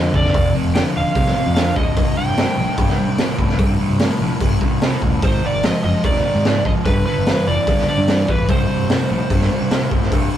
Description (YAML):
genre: blues rock power trio and southern rock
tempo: 147 BPM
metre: 4/4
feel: straight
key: C minor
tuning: A4 = 438 Hz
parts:
  - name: overdriven slide guitar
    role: melody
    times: 0.0-10.4 s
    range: B4 to G5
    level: -22 LUFS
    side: right 2 dB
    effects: none
  - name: crunchy overdriven guitar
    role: riff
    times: 0.0-10.4 s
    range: C2 to F3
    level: -20 LUFS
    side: left 1 dB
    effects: none
  - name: growling fingered electric bass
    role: bass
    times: 0.0-10.3 s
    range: C1 to Ab2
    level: -22 LUFS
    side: equal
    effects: overdrive
  - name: raw garage drum kit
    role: drums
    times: 0.1-10.2 s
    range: hi-hat, kick drum, snare drum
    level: -19 LUFS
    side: equal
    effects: none
room: light reverb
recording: rough rehearsal-room recording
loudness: -15 LUFS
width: side -11 dB against mid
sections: 0.0-10.4 A section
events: none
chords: 0.0 F5; 2.0 C5; 5.2 Ab5; 6.9 G; 8.5 C5